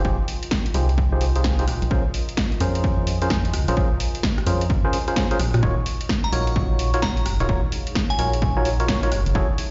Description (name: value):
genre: UK garage, two-step garage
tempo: 129 BPM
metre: 4/4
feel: swing 63% on 16ths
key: Eb dorian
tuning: A4 = 440 Hz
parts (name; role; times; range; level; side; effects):
- percussive organ stab; stabs; 0.0-9.5 s; Db4 to Db5; -29 LUFS; equal; chorus, dub echo
- organ-like FM bass; bass; 0.0-9.5 s; Eb1 to Bb2; -24 LUFS; equal; none
- electronic kick drum; drums; 0.0-9.5 s; none; -26 LUFS; equal; overdrive
- deep dark ambient pad; texture; 0.2-9.7 s; Eb4 to Ab5; -40 LUFS; equal; none
- punchy analog drum machine; drums; 0.3-9.7 s; hi-hat, rim click, snare drum; -30 LUFS; equal; overdrive
- glassy synth bell; melody; 6.2-8.6 s; Ab5 to Db6; -31 LUFS; equal; chorus, dub echo
room: light reverb, digital ambience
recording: played on a big sound system in a bare room, large studio reverb, nothing above 7.6 kHz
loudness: -22 LUFS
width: mono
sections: 0.0-9.7 A section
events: drum fill 5.4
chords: 0.0 Fm9; 1.7 Bbm9; 5.6 Ebm9; 9.1 Gbm9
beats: | 0.05 0.51 0.98 1.44 | 1.91 2.37 2.84 3.30 | 3.77 4.23 4.70 5.16 | 5.63 6.09 6.56 7.03 | 7.49 7.96 8.42 8.88 | 9.35